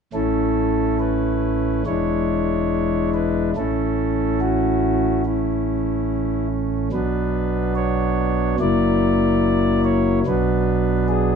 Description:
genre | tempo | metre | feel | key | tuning
classical, chorale-style piece for pipe organ | 72 BPM | 4/4 | rubato | A major | A4 = 441 Hz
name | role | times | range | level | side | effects
chamber organ, principal | solo | 0.1-11.4 s | E1 to D5 | -18 LUFS | equal | none
room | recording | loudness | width
moderate stone room reverb, RT60 1.0 s | minimal, uncompressed stereo recording | -18 LUFS | side -6 dB against mid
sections
0.1-11.4 A section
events
none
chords
0.1 A; 1.9 E7; 3.6 A; 6.9 Bm; 8.6 F#7; 10.3 Bm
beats
| 0.14 1.00 1.87 2.72 | 3.57 4.42 5.25 6.09 | 6.93 7.76 8.59 9.43 | 10.26 11.08

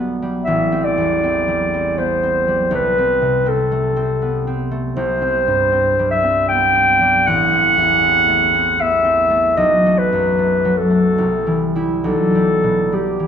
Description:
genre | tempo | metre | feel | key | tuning
classical, romantic duo for clarinet and harp | 67-82 BPM | 3/4 | rubato | unclear | A4 = 438 Hz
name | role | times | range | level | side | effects
warm clarinet | melody | 0.0-13.3 s | G4 to G5 | -15 LUFS | left 1 dB | none
concert harp | accompaniment | 0.0-13.3 s | A1 to E4 | -19 LUFS | equal | none
room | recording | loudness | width
wet recital hall reverb, RT60 1.5 s | minimal, uncompressed stereo recording | -14 LUFS | side -8 dB against mid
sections
0.0-13.3 A section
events
none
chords
0.5 Am7; 2.7 Am/C; 5.0 C5; 7.3 Am; 9.6 B5; 11.2 C; 12.1 Em/B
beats
| 0.46 1.23 1.98 | 2.73 3.47 4.21 | 4.96 5.72 6.49 | 7.26 8.02 8.80 | 9.57 10.38 11.19 | 12.05 12.92

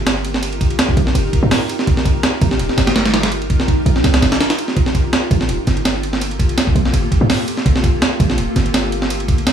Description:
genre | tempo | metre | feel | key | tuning
drum and bass, jungle | 166 BPM | 4/4 | swing 54% on 16ths | G minor | A4 = 440 Hz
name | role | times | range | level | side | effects
granular cloud pad | sustained chords | 0.0-9.5 s | Bb3 to Bb4 | -22 LUFS | equal | built-in reverb
warm 808-style bass | bass | 0.0-9.3 s | D1 to G2 | -18 LUFS | equal | none
breakbeat sampler-style drum kit | drums | 0.1-9.5 s | hi-hat, kick drum, ride cymbal, snare drum | -16 LUFS | right 1 dB | none
room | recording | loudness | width
little or no reverb | studio reverb | -14 LUFS | side -8 dB against mid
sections
0.0-9.5 A section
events
none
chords
0.0 Ebadd9; 4.8 Gm9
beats
0.07 | 0.43 0.79 1.15 1.51 | 1.87 2.23 2.60 2.96 | 3.32 3.68 4.04 4.40 | 4.76 5.13 5.49 5.85 | 6.21 6.57 6.93 7.29 | 7.66 8.02 8.38 8.74 | 9.10 9.46

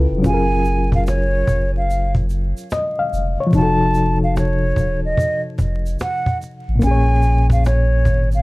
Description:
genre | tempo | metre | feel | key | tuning
lo-fi hip hop | 73 BPM | 4/4 | swing 65% on 16ths | unclear | A4 = 438 Hz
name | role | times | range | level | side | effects
reed electric piano | accompaniment | 0.0-8.4 s | Bb2 to F5 | -20 LUFS | left 2 dB | fast tremolo, cassette tape
saturated sub bass | bass | 0.0-8.4 s | Eb1 to Bb1 | -18 LUFS | equal | none
cajon | drums | 0.2-8.3 s | none | -21 LUFS | equal | none
egg shaker | percussion | 0.2-8.4 s | none | -45 LUFS | right 5 dB | none
breathy concert flute | melody | 0.3-8.4 s | Db5 to A5 | -22 LUFS | right 1 dB | tape echo
room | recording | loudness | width
light reverb | dark, warm production, vinyl crackle | -15 LUFS | side -21 dB against mid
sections
0.0-8.4 A section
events
none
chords
0.2 Gbmaj9; 3.5 F7b9; 6.8 Bbm7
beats
| 0.24 1.07 1.89 2.71 | 3.53 4.36 5.18 6.00 | 6.82 7.64

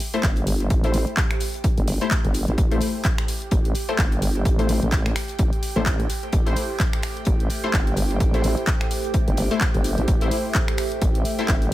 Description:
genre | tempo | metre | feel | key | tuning
bass house | 128 BPM | 4/4 | swing 57% on 16ths | A minor | A4 = 440 Hz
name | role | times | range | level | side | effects
orchestra-hit-like synth stab | stabs | 0.0-11.5 s | A3 to C5 | -29 LUFS | left 3 dB | built-in reverb, cassette tape, sidechain pumping, tape echo
house drum kit | drums | 0.0-11.7 s | finger snaps, handclaps, hi-hat | -29 LUFS | equal | studio ambience
tight metal drum kit | drums | 0.0-11.7 s | hi-hat, snare drum | -39 LUFS | left 3 dB | none
airy breathy pad | texture | 0.0-11.7 s | G4 | -33 LUFS | right 6 dB | chorus, phaser, sidechain pumping
vowel-sweep wobble bass | bass | 0.2-11.7 s | G1 to A1 | -23 LUFS | equal | chorus, tube saturation, sidechain pumping
electronic kick drum | drums | 0.2-11.6 s | none | -22 LUFS | equal | studio ambience
dark analog pad | sustained chords | 6.3-11.7 s | A3 to E5 | -32 LUFS | left 1 dB | chorus, sidechain pumping
room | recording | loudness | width
digital ambience | none | -19 LUFS | side -15 dB against mid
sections
0.0-11.7 A section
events
none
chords
0.0 Am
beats
0.23 | 0.70 1.17 1.64 2.11 | 2.58 3.05 3.52 3.98 | 4.45 4.92 5.39 5.86 | 6.33 6.80 7.27 7.74 | 8.20 8.67 9.14 9.61 | 10.08 10.55 11.02 11.48

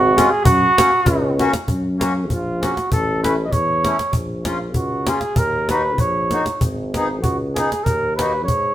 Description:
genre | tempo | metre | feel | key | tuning
alpine folk, alpine dance band | 97 BPM | 2/4 | straight | F# major | A4 = 438 Hz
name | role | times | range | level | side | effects
mellow trumpet | melody | 0.0-8.7 s | E#4 to D#5 | -18 LUFS | right 2 dB | none
warm tuba | bass | 0.0-8.7 s | G#1 to G#2 | -23 LUFS | equal | none
accordion | accompaniment | 0.2-8.3 s | G#3 to G#4 | -24 LUFS | left 2 dB | none
cajon | drums | 0.2-8.6 s | none | -21 LUFS | equal | none
room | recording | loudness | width
moderate stone room reverb, RT60 1.2 s | band playing live in one room | -16 LUFS | side -12 dB against mid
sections
0.0-1.7 A section; 1.7-8.7 B section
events
drum fill 1.1-1.7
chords
0.4 F#; 2.9 A; 4.1 A#m; 5.4 D#m7; 6.6 G#m; 7.9 D#m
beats
| 0.45 1.06 | 1.68 2.30 | 2.91 3.52 | 4.13 4.74 | 5.36 5.98 | 6.61 7.24 | 7.86 8.48

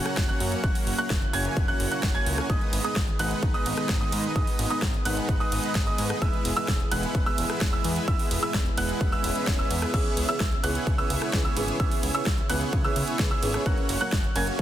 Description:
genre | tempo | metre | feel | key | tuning
EDM, festival progressive house | 129 BPM | 4/4 | straight | G# minor | A4 = 442 Hz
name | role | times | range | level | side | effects
lush unison pad | sustained chords | 0.0-14.6 s | C#3 to G#4 | -36 LUFS | equal | chorus, sidechain pumping
clear baby grand piano | arpeggios | 0.0-14.6 s | D#6 to G#6 | -32 LUFS | right 2 dB | sidechain pumping, digital delay
dense compressed supersaw | riff | 0.0-14.6 s | G#3 to G#5 | -31 LUFS | right 1 dB | sidechain pumping, digital delay
big-room dance drum kit | drums | 0.1-14.6 s | crash cymbal, hi-hat, ride cymbal, rim click, snare drum | -32 LUFS | equal | none
fat analog bass | bass | 0.2-14.6 s | E1 to G#2 | -32 LUFS | equal | sidechain pumping
electronic kick drum | drums | 0.2-14.6 s | none | -26 LUFS | equal | none
swell | sound effects | 9.2-9.9 s | none | -37 LUFS | left 4 dB | none
fingerpicked steel-string acoustic guitar | accompaniment | 9.9-14.5 s | E3 to A#4 | -33 LUFS | right 1 dB | sidechain pumping, digital delay
room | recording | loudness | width
light reverb | dense, heavily limited modern master | -23 LUFS | side -12 dB against mid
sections
0.0-14.6 A section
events
swell 9.2-9.9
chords
0.0 F#; 2.5 G#m; 6.2 E; 9.9 C#m7; 13.7 F#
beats
0.17 | 0.64 1.10 1.57 2.03 | 2.50 2.96 3.43 3.89 | 4.36 4.82 5.29 5.75 | 6.22 6.68 7.15 7.61 | 8.08 8.54 9.01 9.47 | 9.94 10.40 10.87 11.33 | 11.80 12.26 12.73 13.19 | 13.66 14.12 14.59

